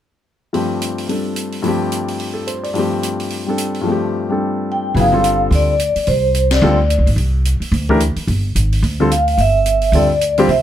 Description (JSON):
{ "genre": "modal jazz", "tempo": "217 BPM", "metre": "4/4", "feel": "swing 59% on 8ths", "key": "unclear", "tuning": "A4 = 440 Hz", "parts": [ { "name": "warm concert grand piano", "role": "accompaniment", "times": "0.5-10.5 s", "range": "G2 to D5", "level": "-17 LUFS", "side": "left 2 dB", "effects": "none" }, { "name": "open jazz drum kit", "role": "drums", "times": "0.5-10.6 s", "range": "hi-hat, kick drum, ride cymbal, snare drum", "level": "-26 LUFS", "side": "right 1 dB", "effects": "none" }, { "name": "vibraphone with medium mallets", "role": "melody", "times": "4.7-7.0, 9.1-10.6 s", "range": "C5 to G5", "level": "-16 LUFS", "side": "equal", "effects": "none" }, { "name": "upright bass", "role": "bass", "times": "4.9-10.6 s", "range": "G1 to D2", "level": "-16 LUFS", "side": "equal", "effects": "none" } ], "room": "little or no reverb", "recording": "close, detailed microphones", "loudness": "-14 LUFS", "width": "side -11 dB against mid", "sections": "0.5-5.0 A section; 5.0-10.6 B section", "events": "band accent 6.5", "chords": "0.5 G9sus4", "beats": "| 0.54 0.82 1.09 1.37 | 1.65 1.92 2.20 2.48 | 2.75 3.03 3.31 3.58 | 3.86 4.13 4.41 4.69 | 4.96 5.24 5.52 5.79 | 6.07 6.34 6.62 6.90 | 7.17 7.45 7.72 8.00 | 8.28 8.55 8.83 9.11 | 9.38 9.66 9.94 10.21 | 10.49" }